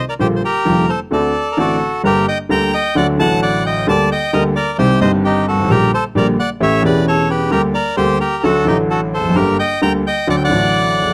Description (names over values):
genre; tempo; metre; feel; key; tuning
tango; 131 BPM; 4/4; rubato; G harmonic minor; A4 = 437 Hz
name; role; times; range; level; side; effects
bandoneon; melody; 0.0-11.1 s; Eb4 to Bb5; -19 LUFS; equal; none
warm grand piano; accompaniment; 0.2-11.1 s; E1 to G4; -18 LUFS; equal; none
room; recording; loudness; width
light reverb; close, detailed microphones; -15 LUFS; mono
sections
0.0-2.0 A section; 2.0-11.1 B section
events
none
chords
0.2 Bb6; 1.1 D7; 2.0 Gm; 3.0 D; 3.9 Gm/D; 4.8 Cm; 5.7 Gm/Bb; 6.6 A7; 7.5 Gm/D; 8.4 D; 9.4 Gm; 10.3 D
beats
| 0.19 0.65 1.11 1.57 | 2.04 2.50 2.96 3.42 | 3.87 4.33 4.79 5.24 | 5.70 6.15 6.61 7.06 | 7.52 7.97 8.43 8.90 | 9.36 9.82 10.28 10.74